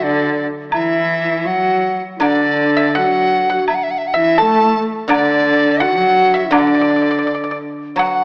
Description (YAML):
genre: chinese traditional, Chinese chamber ensemble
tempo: 84 BPM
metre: 2/4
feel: rubato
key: D gong mode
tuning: A4 = 440 Hz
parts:
  - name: hollow large dizi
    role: melody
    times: 0.0-8.2 s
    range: D5 to A5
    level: -20 LUFS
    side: equal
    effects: none
  - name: bright reedy low xiao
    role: second line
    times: 0.0-7.6 s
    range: D4 to A4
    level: -23 LUFS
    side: equal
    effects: none
  - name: rich cello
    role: second line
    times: 0.0-7.6 s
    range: D3 to A3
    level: -24 LUFS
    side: equal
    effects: none
  - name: guzheng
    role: accompaniment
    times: 0.0-8.2 s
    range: D3 to F#3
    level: -22 LUFS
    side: equal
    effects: none
  - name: woodblock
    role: percussion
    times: 0.7-8.1 s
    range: none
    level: -26 LUFS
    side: equal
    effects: none
  - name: pipa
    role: second line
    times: 2.2-8.2 s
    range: D5 to A5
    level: -23 LUFS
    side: equal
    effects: none
room: moderate concert hall reverb, RT60 2.3 s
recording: AM radio sound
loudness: -16 LUFS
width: mono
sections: 0.0-8.0 A section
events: none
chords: none